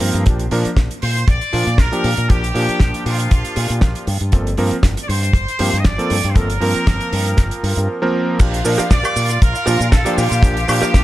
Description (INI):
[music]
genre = nu-disco, nu disco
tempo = 118 BPM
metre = 4/4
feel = swing 53% on 16ths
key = Bb major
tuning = A4 = 441 Hz
[part]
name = clear electric grand piano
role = accompaniment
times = 0.0-11.0 s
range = F3 to Bb4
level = -21 LUFS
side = right 1 dB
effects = sidechain pumping
[part]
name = fingered electric bass with an envelope filter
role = bass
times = 0.0-11.0 s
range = G1 to Bb2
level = -20 LUFS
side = equal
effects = tube saturation
[part]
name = damped 70s drum kit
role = drums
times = 0.0-11.0 s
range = cabasa, crash cymbal, hi-hat, snare drum, woodblock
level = -24 LUFS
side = right 2 dB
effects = small room ambience
[part]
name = kick drum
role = drums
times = 0.3-11.0 s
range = none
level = -13 LUFS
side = equal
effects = small room ambience
[part]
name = muted trumpet section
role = melody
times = 1.0-11.0 s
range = F4 to Eb5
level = -23 LUFS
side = equal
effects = analog delay
[part]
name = rich symphonic string section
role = sustained chords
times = 8.4-11.0 s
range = F4 to F5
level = -25 LUFS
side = left 1 dB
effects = sidechain pumping
[part]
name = direct-recorded clean electric guitar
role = riff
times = 8.8-10.9 s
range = G4 to F5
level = -24 LUFS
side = right 4 dB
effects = lush chorus
[sound]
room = studio reverb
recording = none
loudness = -14 LUFS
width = side -15 dB against mid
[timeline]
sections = 0.0-8.4 A section; 8.4-11.0 B section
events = drop 8.4-11.0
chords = 0.3 Bb6; 4.1 Gm11; 8.4 Bb6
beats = | 0.26 0.77 1.28 1.79 | 2.30 2.80 3.31 3.82 | 4.33 4.84 5.35 5.86 | 6.36 6.87 7.38 7.89 | 8.40 8.91 9.41 9.92 | 10.43 10.94